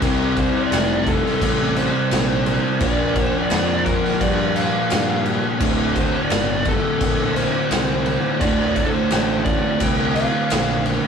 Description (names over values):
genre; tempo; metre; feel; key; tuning
stoner and doom metal; 86 BPM; 4/4; straight; D minor; A4 = 440 Hz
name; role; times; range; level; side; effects
fuzz guitar; riff; 0.0-11.1 s; D2 to C4; -21 LUFS; left 1 dB; distortion
fuzz picked electric bass; bass; 0.0-11.0 s; D1 to G2; -25 LUFS; equal; overdrive, tube saturation
raw garage drum kit; drums; 0.0-11.0 s; crash cymbal, kick drum, snare drum; -22 LUFS; equal; none
fuzz lead guitar; melody; 0.4-10.8 s; A4 to G5; -24 LUFS; right 2 dB; distortion
room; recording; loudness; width
moderate booth ambience, RT60 0.2 s; rough rehearsal-room recording, warm saturation; -17 LUFS; side -6 dB against mid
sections
0.0-11.1 A section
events
none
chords
0.0 C5; 2.8 Bb5; 5.6 D5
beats
| 0.03 0.72 1.42 2.12 | 2.82 3.52 4.22 4.92 | 5.61 6.31 7.01 7.71 | 8.41 9.11 9.81 10.51